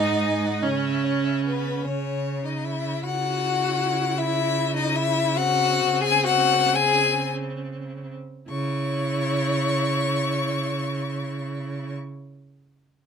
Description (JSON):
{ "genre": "classical, slow romantic movement for string quartet", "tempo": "31-53 BPM (dotted quarters)", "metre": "6/8", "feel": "rubato", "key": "C# minor", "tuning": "A4 = 441 Hz", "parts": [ { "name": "rich violin", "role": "melody", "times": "0.0-11.9 s", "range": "B4 to C#6", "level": "-25 LUFS", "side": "left 6 dB", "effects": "none" }, { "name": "warm violin", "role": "second line", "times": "0.0-11.9 s", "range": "B3 to G#5", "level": "-28 LUFS", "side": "left 4 dB", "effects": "none" }, { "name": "rich viola", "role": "accompaniment", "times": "0.0-11.9 s", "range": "B#3 to E4", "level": "-29 LUFS", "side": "right 4 dB", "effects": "none" }, { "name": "rich cello", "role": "bass", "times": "0.0-11.9 s", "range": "G#2 to C#3", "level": "-28 LUFS", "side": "right 2 dB", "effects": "none" } ], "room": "little or no reverb", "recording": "close, detailed microphones", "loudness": "-21 LUFS", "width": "side -7 dB against mid", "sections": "0.0-3.0 A section; 3.0-8.5 B section; 8.5-13.1 C section", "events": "slowing down 1.8-8.5", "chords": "0.0 G#5; 0.6 C#m; 5.4 C#sus4; 8.5 C#m" }